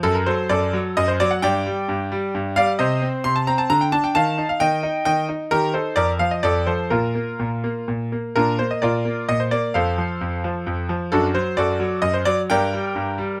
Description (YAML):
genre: classical-period piano sonatina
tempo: 131 BPM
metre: 3/4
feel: rubato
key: Bb major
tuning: A4 = 440 Hz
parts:
  - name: bright concert grand piano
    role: solo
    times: 0.0-13.4 s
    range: F2 to C6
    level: -21 LUFS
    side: equal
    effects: none
room: little or no reverb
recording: close, detailed microphones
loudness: -21 LUFS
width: mono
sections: 0.0-8.4 A section; 8.4-13.4 A section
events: none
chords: 0.0 D/F#; 1.4 G5; 2.8 N.C.; 4.2 Eb; 5.5 Cm/Eb; 6.0 Bb/F; 6.4 F; 6.9 Bb5; 8.4 Bb; 9.7 F; 11.1 D/F#; 12.5 Gm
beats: | 0.04 0.50 0.97 | 1.43 1.89 2.34 | 2.79 3.25 3.70 | 4.16 4.61 5.06 | 5.51 5.96 6.43 | 6.91 7.39 7.88 | 8.36 8.82 9.28 | 9.74 10.21 10.66 | 11.11 11.57 12.02 | 12.50 12.96